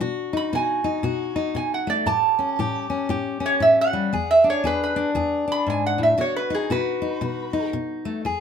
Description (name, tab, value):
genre	acoustic country blues, solo or duo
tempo	117 BPM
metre	4/4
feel	swing 61% on 8ths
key	unclear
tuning	A4 = 440 Hz
part	fingerpicked steel-string acoustic guitar	accompaniment	0.0-8.4 s	E2 to G#4	-24 LUFS	left 4 dB	none
part	lap resonator guitar	melody	0.4-7.7 s	G#4 to B5	-21 LUFS	right 3 dB	none
room	light reverb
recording	minimal, uncompressed stereo recording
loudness	-20 LUFS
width	side -7 dB against mid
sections	0.0-8.2 A section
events	none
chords	0.0 B; 2.1 A7; 4.1 E7; 6.2 B